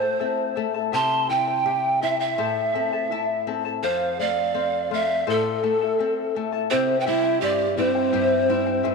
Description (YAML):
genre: andean folk, Andean ensemble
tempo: 83 BPM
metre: 2/4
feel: straight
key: unclear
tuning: A4 = 440 Hz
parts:
  - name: breathy mellow pan flute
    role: melody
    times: 0.0-8.9 s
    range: A4 to A5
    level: -24 LUFS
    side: equal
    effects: none
  - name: breathy bright pan flute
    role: second line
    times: 0.0-8.9 s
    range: C4 to C6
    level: -27 LUFS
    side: right 10 dB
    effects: none
  - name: charango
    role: accompaniment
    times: 0.0-8.9 s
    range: E4 to A5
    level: -28 LUFS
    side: left 11 dB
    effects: none
  - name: nylon-string guitar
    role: accompaniment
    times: 0.0-8.9 s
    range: F2 to G4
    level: -30 LUFS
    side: left 8 dB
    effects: none
room: wet plate reverb, RT60 3.0 s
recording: 1960s-style stereo with parts hard left and right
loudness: -20 LUFS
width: side -4 dB against mid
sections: 0.0-6.7 A section; 6.7-8.9 B section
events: none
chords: 0.0 Am; 0.9 C; 2.4 Am; 3.8 F; 5.3 Am; 6.7 C